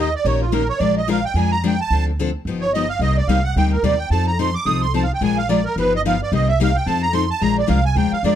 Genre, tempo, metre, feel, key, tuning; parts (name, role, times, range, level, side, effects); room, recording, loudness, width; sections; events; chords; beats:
acoustic string swing (jazz manouche); 218 BPM; 4/4; swing 58% on 8ths; Bb mixolydian; A4 = 440 Hz
musette accordion; melody; 0.0-8.4 s; F4 to Eb6; -20 LUFS; right 4 dB
picked steel-string acoustic guitar; accompaniment; 0.0-8.3 s; C3 to Bb4; -21 LUFS; left 7 dB
upright bass; bass; 0.0-8.4 s; G1 to F2; -21 LUFS; right 1 dB
light reverb; dark, warm production; -16 LUFS; side -10 dB against mid
0.0-7.4 A section
accordion solo 0.0-8.4
0.0 Eb7; 0.8 Bb7; 1.9 Dm7; 2.5 Gaug7; 3.0 Cm7; 4.1 F7; 5.2 Bb7; 5.8 Gaug7; 6.3 Cm7; 6.9 F7; 7.4 Bb7
0.25 0.53 | 0.80 1.08 1.35 1.63 | 1.90 2.18 2.45 2.73 | 3.00 3.28 3.56 3.83 | 4.11 4.38 4.66 4.93 | 5.21 5.48 5.76 6.04 | 6.31 6.59 6.86 7.14 | 7.41 7.69 7.96 8.24